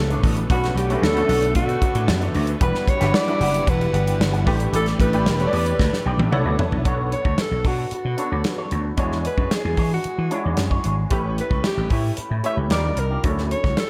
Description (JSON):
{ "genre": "polished 1980s jazz-funk pop", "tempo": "113 BPM", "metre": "4/4", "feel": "straight", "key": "B minor", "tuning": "A4 = 440 Hz", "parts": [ { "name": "breathy alto saxophone", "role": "melody", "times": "0.0-13.9 s", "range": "E4 to E5", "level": "-28 LUFS", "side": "equal", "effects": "none" }, { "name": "clear grand piano", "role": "accompaniment", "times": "0.0-13.9 s", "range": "F#3 to G5", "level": "-30 LUFS", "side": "equal", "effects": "ensemble chorus" }, { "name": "lush unison pad", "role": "sustained chords", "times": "0.0-6.8 s", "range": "D3 to F#4", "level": "-34 LUFS", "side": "equal", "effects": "chorus" }, { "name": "vintage slap bass", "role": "bass", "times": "0.0-13.7 s", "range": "E1 to E3", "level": "-25 LUFS", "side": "equal", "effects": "none" }, { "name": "electric guitar with an envelope filter", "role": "riff", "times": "0.1-13.8 s", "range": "D4 to G5", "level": "-34 LUFS", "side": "equal", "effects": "lush chorus" }, { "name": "modern studio drum kit", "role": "drums", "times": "0.1-13.9 s", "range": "hi-hat, kick drum, snare drum, toms", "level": "-26 LUFS", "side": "equal", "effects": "gated reverb" } ], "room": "light reverb, small room ambience", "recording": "none", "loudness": "-21 LUFS", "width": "mono", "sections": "0.0-6.9 A section; 6.9-13.9 B section", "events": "drum fill 5.8-6.9; grand piano fill 5.8-6.9", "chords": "0.0 Bm9; 2.6 Em9; 4.5 A9sus4; 6.3 Bm11; 6.9 Bm9; 9.0 E13; 11.1 A9; 12.7 D#maj9; 13.2 Dmaj9", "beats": "| 0.50 1.03 1.56 2.08 | 2.61 3.14 3.67 4.20 | 4.73 5.26 5.79 6.32 | 6.85 7.38 7.91 8.45 | 8.98 9.51 10.04 10.57 | 11.11 11.64 12.17 12.71 | 13.24 13.77" }